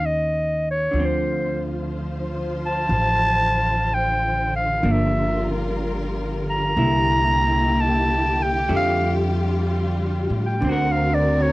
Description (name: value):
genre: jazz ballad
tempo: 62 BPM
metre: 4/4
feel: swing 67% on 8ths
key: unclear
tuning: A4 = 440 Hz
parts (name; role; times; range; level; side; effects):
- growling clarinet; melody; 0.0-11.5 s; C5 to Bb5; -21 LUFS; equal; cassette tape
- vintage hollow-body jazz guitar; accompaniment; 0.0-11.5 s; D3 to A#4; -28 LUFS; right 1 dB; none
- upright bass; bass; 0.0-11.5 s; G1 to A2; -24 LUFS; equal; none
- warm symphonic string section; sustained chords; 0.9-11.5 s; D3 to C5; -26 LUFS; left 1 dB; none
room: light reverb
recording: home recording on cassette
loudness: -19 LUFS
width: side -19 dB against mid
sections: 0.0-11.5 A section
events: clarinet solo 0.0-11.5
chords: 0.0 Eb7; 0.9 Dm7; 4.8 Gm7; 6.8 C9; 8.7 F69; 10.6 Daug7